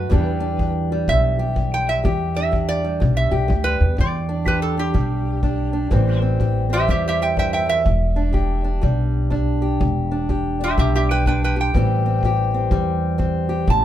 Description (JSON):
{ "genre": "acoustic country blues, solo or duo", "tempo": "124 BPM", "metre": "4/4", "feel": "swing 63% on 8ths", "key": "E minor", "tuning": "A4 = 439 Hz", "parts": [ { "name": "metal-body resonator slide guitar", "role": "melody", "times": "0.0-13.8 s", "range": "G4 to A5", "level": "-23 LUFS", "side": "right 3 dB", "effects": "none" }, { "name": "fingerpicked old ladder-braced acoustic guitar", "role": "accompaniment", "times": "0.0-13.8 s", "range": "E2 to G4", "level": "-24 LUFS", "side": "left 2 dB", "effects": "none" }, { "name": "upright bass", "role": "bass", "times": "0.0-13.8 s", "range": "E1 to E2", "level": "-20 LUFS", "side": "equal", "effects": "none" }, { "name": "kick drum", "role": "drums", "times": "0.1-13.8 s", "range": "none", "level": "-24 LUFS", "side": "equal", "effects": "none" } ], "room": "light reverb", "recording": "minimal, uncompressed stereo recording", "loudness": "-17 LUFS", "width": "side -12 dB against mid", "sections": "0.0-4.0 A section; 4.0-13.8 B section", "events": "resonator guitar played with a steel bar solo 0.0-4.0", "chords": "0.1 Em7; 5.9 Am7; 7.9 Em7; 11.7 Am7", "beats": "| 0.11 0.59 1.07 1.56 | 2.04 2.52 3.01 3.49 | 3.98 4.46 4.95 5.43 | 5.92 6.40 6.89 7.37 | 7.86 8.35 8.83 9.32 | 9.80 10.29 10.77 11.26 | 11.74 12.22 12.71 13.19 | 13.68" }